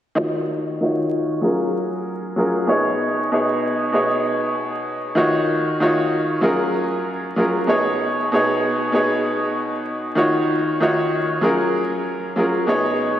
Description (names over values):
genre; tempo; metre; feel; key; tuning
hip hop; 96 BPM; 4/4; swing 62% on 16ths; Eb minor; A4 = 440 Hz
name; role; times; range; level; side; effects
bright upright piano; accompaniment; 0.2-13.2 s; B2 to Db5; -18 LUFS; equal; cassette tape, high-pass filter, low-pass filter
room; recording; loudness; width
wet lush hall reverb, RT60 2.9 s; dreamy mix soaked in reverb, vinyl crackle; -18 LUFS; side -11 dB against mid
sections
0.2-5.2 A section; 5.2-13.2 B section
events
filter sweep on upright piano 0.2-5.2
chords
0.2 Ebm7; 1.4 Gbmaj7; 2.7 B6; 5.2 Ebm7; 6.4 Gbmaj7; 7.7 B6; 10.2 Ebm7; 11.4 Gbmaj7; 12.7 B6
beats
| 0.19 0.81 1.44 2.06 | 2.69 3.31 3.94 4.56 | 5.19 5.81 6.44 7.06 | 7.69 8.31 8.94 9.56 | 10.19 10.81 11.44 12.06 | 12.69